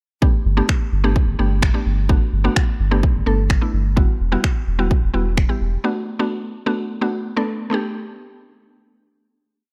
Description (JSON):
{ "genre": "dance-pop", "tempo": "128 BPM", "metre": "4/4", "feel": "straight", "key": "G major", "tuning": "A4 = 440 Hz", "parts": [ { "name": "mallet-like synth pluck", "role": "accompaniment", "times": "0.2-9.7 s", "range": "G3 to A4", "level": "-25 LUFS", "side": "equal", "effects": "chorus, sidechain pumping" }, { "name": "pop drum kit", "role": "drums", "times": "0.2-5.5 s", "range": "finger snaps, kick drum", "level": "-20 LUFS", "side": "equal", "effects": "none" }, { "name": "warm sub bass", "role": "bass", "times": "0.5-5.8 s", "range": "E1 to G1", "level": "-21 LUFS", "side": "equal", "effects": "sidechain pumping" } ], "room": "light reverb", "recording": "none", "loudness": "-19 LUFS", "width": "mono", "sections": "0.2-7.7 verse; 7.7-9.7 final chord", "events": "none", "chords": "0.2 Gadd9; 4.0 Emadd9; 5.8 Bm7; 7.7 Gadd9" }